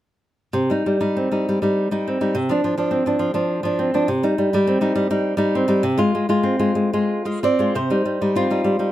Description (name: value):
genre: romantic piece for solo classical guitar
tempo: 82-107 BPM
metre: 3/4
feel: rubato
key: C minor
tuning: A4 = 441 Hz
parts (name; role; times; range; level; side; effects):
- nylon-string guitar; solo; 0.5-8.9 s; C3 to D5; -18 LUFS; equal; none
room: light reverb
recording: close, detailed microphones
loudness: -18 LUFS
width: side -14 dB against mid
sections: 0.5-7.8 A section; 7.8-8.9 B section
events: none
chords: 0.5 Cm; 2.4 Csus24; 4.1 Cm; 5.8 Fm/C; 7.8 Cm